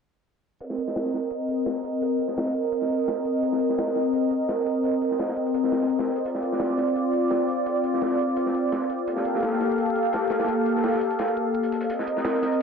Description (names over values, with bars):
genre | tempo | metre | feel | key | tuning
liquid drum and bass | 170 BPM | 4/4 | straight | C dorian | A4 = 439 Hz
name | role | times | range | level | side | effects
warm analog pad | sustained chords | 0.6-12.6 s | Bb3 to F5 | -23 LUFS | equal | chorus
crunchy breakbeat drum kit | drums | 0.6-12.6 s | hi-hat, snare drum | -34 LUFS | equal | high-pass filter on hats, high-pass filter on snare, high-pass filter on room
electronic hi-hat | drums | 0.6-12.5 s | none | -53 LUFS | right 3 dB | none
room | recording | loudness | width
moderate lush hall reverb, RT60 1.8 s, small room ambience | low-pass filter | -22 LUFS | side -6 dB against mid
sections
0.6-12.6 A section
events
filter sweep 0.6-12.6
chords
0.6 Cm7; 6.3 Dm7; 9.1 Gm9; 11.9 Cm7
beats
| 0.60 0.96 1.31 1.66 | 2.02 2.37 2.72 3.08 | 3.43 3.78 4.13 4.49 | 4.84 5.19 5.55 5.90 | 6.25 6.61 6.96 7.31 | 7.66 8.02 8.37 8.72 | 9.08 9.43 9.78 10.13 | 10.49 10.84 11.19 11.55 | 11.90 12.25 12.61